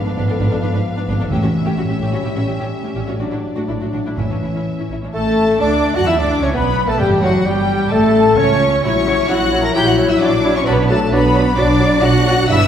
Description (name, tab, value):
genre	quick classical-period movement for symphony orchestra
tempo	130 BPM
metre	4/4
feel	rubato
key	D major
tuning	A4 = 440 Hz
part	clear studio violin section	melody	0.0-12.7 s	D5 to A#6	-24 LUFS	left 4 dB	none
part	mellow French horn section	sustained chords	0.0-12.7 s	E3 to F#4	-20 LUFS	left 3 dB	none
part	rich studio violin section	second line	0.1-12.7 s	D4 to A#5	-24 LUFS	left 3 dB	none
part	rich studio viola section	accompaniment	0.1-12.7 s	F#3 to B4	-25 LUFS	right 1 dB	none
part	clear studio cello section	bass	0.1-12.7 s	G#2 to A#4	-22 LUFS	right 1 dB	none
part	rich studio double bass section	bass	0.2-12.7 s	F#1 to F#2	-20 LUFS	right 2 dB	none
part	timpani	percussion	1.3-7.6 s	A2	-23 LUFS	equal	none
part	clear cor anglais	second line	5.1-12.6 s	F#4 to F#5	-28 LUFS	right 2 dB	none
part	mellow flute section	second line	5.1-12.7 s	F#4 to A#5	-24 LUFS	right 1 dB	none
part	warm clarinet	second line	5.1-12.6 s	D4 to F#5	-25 LUFS	equal	none
part	warm bassoon	accompaniment	5.1-12.6 s	F#3 to F#4	-22 LUFS	right 2 dB	none
room	wet scoring stage reverb, RT60 1.8 s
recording	heard from further back in the room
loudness	-13 LUFS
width	side -9 dB against mid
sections	0.0-5.1 A section; 5.1-12.7 B section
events	none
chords	0.0 G#dim7; 1.3 A7; 3.2 D/A; 4.2 A; 5.1 D/A; 7.0 A7; 8.8 F#7/A#; 10.7 Bm